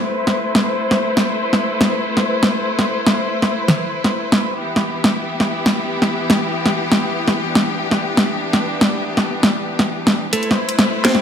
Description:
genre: half-time drum and bass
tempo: 167 BPM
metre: 4/4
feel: swing 55% on 16ths, half-time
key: A minor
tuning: A4 = 441 Hz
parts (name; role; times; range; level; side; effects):
- clear symphonic string section; sustained chords; 0.0-11.2 s; E3 to C5; -20 LUFS; left 1 dB; low-pass filter
- drum and bass drum kit; drums; 0.3-11.2 s; hi-hat, snare drum; -17 LUFS; equal; overdrive, studio reverb
- clean electric guitar; arpeggios; 10.3-11.2 s; A3 to C4; -22 LUFS; right 2 dB; phaser, ping-pong delay
room: moderate digital room reverb, RT60 1.1 s, digital ambience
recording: none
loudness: -15 LUFS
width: side -8 dB against mid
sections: 0.0-10.3 A section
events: none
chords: 0.0 Am; 4.6 Em; 10.3 Am

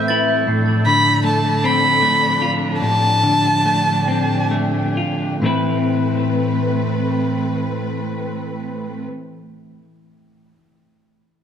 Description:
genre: rock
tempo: 42-53 BPM (dotted quarters)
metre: 6/8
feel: straight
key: A minor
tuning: A4 = 438 Hz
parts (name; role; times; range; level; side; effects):
- warm violin; melody; 0.0-4.5 s; A5 to B5; -18 LUFS; equal; analog delay
- rich studio string section; sustained chords; 0.0-9.0 s; A2 to B4; -24 LUFS; right 1 dB; none
- glockenspiel with brass mallets; arpeggios; 0.0-0.5 s; A6; -26 LUFS; right 4 dB; analog delay
- semi-hollow electric guitar; arpeggios; 0.0-9.1 s; A2 to B4; -19 LUFS; left 1 dB; analog delay
room: wet recital hall reverb, RT60 1.7 s, small room ambience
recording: none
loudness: -16 LUFS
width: side -8 dB against mid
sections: 0.0-5.4 A section; 5.4-8.3 B section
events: slowing down 0.5-5.4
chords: 0.5 F6/A; 5.4 Amadd9

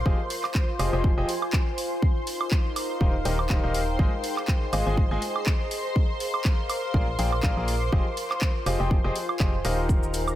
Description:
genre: piano house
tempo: 122 BPM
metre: 4/4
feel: swing 56% on 16ths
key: unclear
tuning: A4 = 440 Hz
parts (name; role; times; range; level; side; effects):
- analog string pad; sustained chords; 0.0-10.4 s; Bb4 to C6; -34 LUFS; equal; ensemble chorus, sidechain pumping
- organ-like FM bass; bass; 0.0-10.4 s; Eb1 to Bb1; -28 LUFS; equal; sidechain pumping
- warbly tape-like pad; texture; 0.0-10.4 s; Eb4 to D6; -33 LUFS; left 1 dB; chorus, built-in reverb, sidechain pumping
- bright concert grand piano; riff; 0.1-10.4 s; Eb3 to Ab5; -31 LUFS; left 2 dB; vintage 12-bit sampler grit, sidechain pumping, dub echo
- electronic kick drum; drums; 0.1-10.0 s; none; -23 LUFS; equal; none
- house drum kit; drums; 0.3-10.4 s; cabasa, handclaps, hi-hat, woodblock; -32 LUFS; right 2 dB; none
room: digital ambience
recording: none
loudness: -23 LUFS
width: side -13 dB against mid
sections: 0.0-10.4 A section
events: none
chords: 0.1 Fm9; 2.0 Eb69; 4.0 Ab6; 5.7 Bb7; 7.9 Fm9

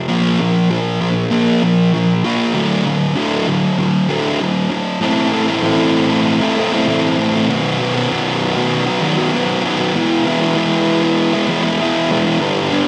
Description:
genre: rock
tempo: 97 BPM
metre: 4/4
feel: straight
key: unclear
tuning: A4 = 440 Hz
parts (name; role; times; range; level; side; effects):
- thick fuzz guitar; solo; 0.0-12.9 s; G2 to A4; -16 LUFS; equal; distortion, slapback echo
room: wet lush hall reverb, RT60 2.1 s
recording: big arena sound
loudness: -16 LUFS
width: mono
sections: 0.0-5.0 A section; 5.0-12.9 B section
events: none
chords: 0.1 Bb5; 2.6 D; 5.0 Am; 7.5 B; 9.9 E

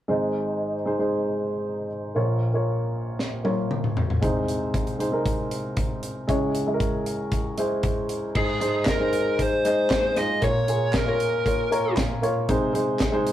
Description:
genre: piano-driven pop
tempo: 116 BPM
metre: 4/4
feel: straight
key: Ab major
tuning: A4 = 440 Hz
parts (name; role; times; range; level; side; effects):
- warm upright piano; accompaniment; 0.1-13.3 s; Ab1 to Bb5; -24 LUFS; equal; none
- modern studio drum kit; drums; 3.2-13.3 s; crash cymbal, handclaps, hi-hat, kick drum, snare drum, toms; -26 LUFS; equal; none
- lead guitar through a small cranked amp; melody; 8.4-11.9 s; Ab4 to Eb5; -24 LUFS; left 1 dB; overdrive
room: light reverb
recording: rough rehearsal-room recording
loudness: -22 LUFS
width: side -12 dB against mid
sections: 0.1-8.4 A section; 8.4-13.3 B section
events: drum fill 3.2-4.2; upright piano fill 11.5-12.5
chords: 0.1 Ab; 2.2 Bbm; 4.2 Ab/C; 6.3 Dbm; 8.4 Ab; 10.4 Bbm; 12.5 Ab/C

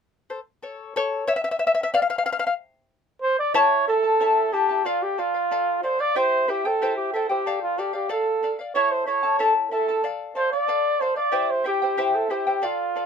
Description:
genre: andean folk, Andean ensemble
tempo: 92 BPM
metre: 2/4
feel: straight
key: unclear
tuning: A4 = 440 Hz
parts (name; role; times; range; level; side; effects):
- charango; accompaniment; 0.3-13.1 s; E4 to A5; -24 LUFS; left 4 dB; none
- warm flugelhorn; melody; 3.2-13.1 s; F4 to D5; -22 LUFS; right 2 dB; none
room: light reverb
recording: none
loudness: -20 LUFS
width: side -6 dB against mid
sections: 0.9-3.5 A section; 3.5-13.1 B section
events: charango solo 0.9-3.5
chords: 0.0 N.C.; 0.9 A; 2.2 N.C.; 3.5 A; 4.8 Dm; 6.1 C; 7.4 Dm; 8.7 A; 10.0 Dm; 11.3 C

